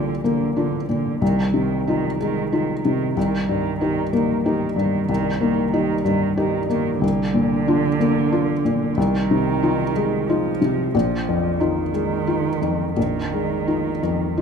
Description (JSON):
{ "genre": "neoclassical piano and strings", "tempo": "92 BPM", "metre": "3/4", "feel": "rubato", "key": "unclear", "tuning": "A4 = 439 Hz", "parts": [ { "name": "muted cello", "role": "second line", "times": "0.0-14.4 s", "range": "D3 to F3", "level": "-25 LUFS", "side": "right 9 dB", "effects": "none" }, { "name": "felt-muted upright piano", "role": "accompaniment", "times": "0.0-14.4 s", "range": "Bb1 to G4", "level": "-20 LUFS", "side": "left 2 dB", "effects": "none" } ], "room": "moderate large studio reverb, RT60 0.9 s", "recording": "minimal, uncompressed stereo recording", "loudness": "-18 LUFS", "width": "side -6 dB against mid", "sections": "0.0-14.4 A section", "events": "none", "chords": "0.0 Bb/C; 1.2 Fm7/C; 3.2 Cm7; 7.0 Bb/C; 9.0 Fm7/C; 10.9 Bb7sus4" }